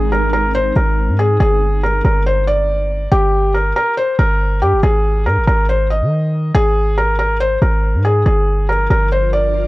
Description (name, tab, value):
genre	hip hop, trap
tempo	140 BPM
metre	4/4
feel	half-time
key	G phrygian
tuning	A4 = 440 Hz
part	felt-muted upright piano	melody	0.0-9.7 s	G4 to Eb5	-16 LUFS	equal	none
part	ethereal airy pad	sustained chords	0.0-1.4, 8.8-9.7 s	F3 to Bb4	-27 LUFS	equal	ensemble chorus, built-in reverb
part	hard-hitting 808-style bass	bass	0.0-9.7 s	G1 to Eb3	-15 LUFS	equal	none
room	small room reverb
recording	dry, gritty hardware recording, transformer saturation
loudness	-13 LUFS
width	side -19 dB against mid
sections	0.0-1.4 A section; 1.4-9.7 B section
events	none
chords	0.0 Ab; 1.4 Gm; 4.8 Ab5; 8.3 Gm7